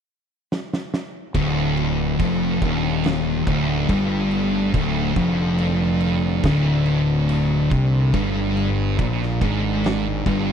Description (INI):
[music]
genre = stoner and doom metal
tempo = 71 BPM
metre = 4/4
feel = straight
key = D phrygian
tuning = A4 = 439 Hz
[part]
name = oversized low-tuned drum kit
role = drums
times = 0.5-10.5 s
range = crash cymbal, kick drum, snare drum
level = -27 LUFS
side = equal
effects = none
[part]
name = metallic inharmonic drone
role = sustained chords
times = 3.2-10.5 s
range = D3 to A4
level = -32 LUFS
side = left 1 dB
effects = chorus, built-in reverb
[part]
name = thick fuzz guitar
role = riff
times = 1.3-10.5 s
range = D2 to C3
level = -23 LUFS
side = right 9 dB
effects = distortion
[part]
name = fuzz fingered electric bass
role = bass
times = 1.3-10.5 s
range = D1 to C2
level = -25 LUFS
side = right 1 dB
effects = overdrive
[part]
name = thick fuzz guitar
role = riff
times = 1.4-10.5 s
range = D2 to C3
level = -22 LUFS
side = left 9 dB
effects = distortion
[sound]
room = little or no reverb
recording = dry, close 1970s-style studio recording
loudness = -18 LUFS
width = side -7 dB against mid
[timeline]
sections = 0.0-1.4 A section; 1.4-10.5 B section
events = drum fill 0.5-1.4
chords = 0.0 N.C.; 1.4 Dm; 8.1 G5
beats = 0.50 | 1.35 2.20 3.05 3.90 | 4.75 5.60 6.45 7.30 | 8.14 8.99 9.84